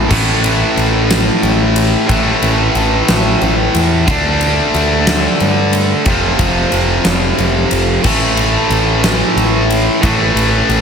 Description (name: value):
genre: quiet-loud alternative rock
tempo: 60 BPM (dotted quarters)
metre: 6/8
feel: straight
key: A minor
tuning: A4 = 441 Hz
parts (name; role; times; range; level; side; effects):
- tight distorted guitar; riff; 0.0-10.8 s; F2 to D4; -13 LUFS; equal; distortion
- growling picked electric bass; bass; 0.1-10.8 s; F1 to G2; -17 LUFS; equal; overdrive
- huge arena drum kit; drums; 0.1-10.8 s; crash cymbal, kick drum, ride cymbal, snare drum; -17 LUFS; equal; none
room: moderate concert hall reverb, RT60 2.1 s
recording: big arena sound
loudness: -11 LUFS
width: side -6 dB against mid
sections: 0.1-10.8 A section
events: none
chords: 0.1 A5; 4.1 D5; 6.1 F5; 8.0 A5